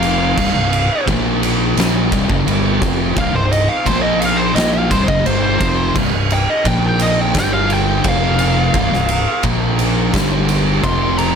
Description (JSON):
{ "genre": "stoner and doom metal", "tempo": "86 BPM", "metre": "4/4", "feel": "straight", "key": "unclear", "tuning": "A4 = 441 Hz", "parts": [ { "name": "fuzz lead guitar", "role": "melody", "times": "0.0-11.4 s", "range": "C5 to C6", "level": "-19 LUFS", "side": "equal", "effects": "wah, distortion, slapback echo" }, { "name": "thick fuzz guitar", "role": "riff", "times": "0.0-11.4 s", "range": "C2 to Bb3", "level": "-20 LUFS", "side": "left 9 dB", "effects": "distortion" }, { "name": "thick fuzz guitar", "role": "riff", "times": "0.0-11.4 s", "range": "C2 to Bb3", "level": "-20 LUFS", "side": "right 10 dB", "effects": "distortion" }, { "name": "growling fingered electric bass", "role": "bass", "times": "0.0-11.4 s", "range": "C1 to Bb1", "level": "-22 LUFS", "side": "equal", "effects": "overdrive" }, { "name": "oversized low-tuned drum kit", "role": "drums", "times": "0.0-11.3 s", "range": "crash cymbal, kick drum, ride cymbal, snare drum", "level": "-18 LUFS", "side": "right 1 dB", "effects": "none" } ], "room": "light reverb, small room ambience", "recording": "none", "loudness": "-13 LUFS", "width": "side -6 dB against mid", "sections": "0.0-11.4 A section", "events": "lead electric guitar solo 0.0-11.4", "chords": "0.4 C5; 1.1 Bb5; 1.8 C5; 3.9 Bb5; 4.6 C5; 6.7 Bb5; 7.4 G5; 8.0 F5; 8.7 C5; 9.4 Bb5; 10.1 G5; 10.8 F5" }